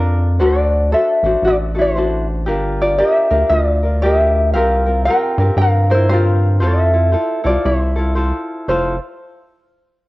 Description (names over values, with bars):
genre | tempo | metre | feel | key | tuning
Hawaiian | 116 BPM | 4/4 | swing 63% on 8ths | F major | A4 = 440 Hz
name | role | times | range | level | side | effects
tenor ukulele | melody | 0.0-9.0 s | D4 to G5 | -16 LUFS | equal | none
tenor ukulele | accompaniment | 0.0-9.0 s | C4 to C5 | -22 LUFS | left 1 dB | cassette tape
rubbery square bass | bass | 0.0-9.0 s | F1 to G2 | -16 LUFS | equal | none
room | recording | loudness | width
moderate spring reverb, RT60 1.4 s, small room reverb | home recording on cassette | -13 LUFS | side -19 dB against mid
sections
0.0-8.7 A section; 8.7-10.1 B section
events
none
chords
0.4 D7; 2.5 Gm7; 4.5 C7sus4; 6.6 Fmaj7